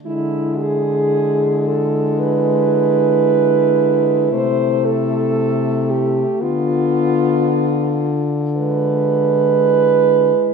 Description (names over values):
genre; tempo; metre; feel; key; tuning
classical, lyrical piece for horn quartet; 57 BPM; 4/4; rubato; unclear; A4 = 440 Hz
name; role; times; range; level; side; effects
mellow French horn; melody; 0.1-10.5 s; E4 to F4; -24 LUFS; left 12 dB; none
mellow French horn; second line; 0.1-10.5 s; E4 to C5; -17 LUFS; right 7 dB; none
mellow French horn; accompaniment; 0.1-10.5 s; G#3 to B3; -23 LUFS; left 5 dB; none
mellow French horn; bass; 0.1-10.3 s; C3 to D3; -20 LUFS; left 2 dB; none
room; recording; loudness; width
moderate scoring stage reverb, RT60 1.8 s; none; -14 LUFS; side -5 dB against mid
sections
0.0-10.5 A section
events
none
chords
0.1 E7/D; 4.3 Am/C; 6.4 Bdim/D; 8.6 E7/D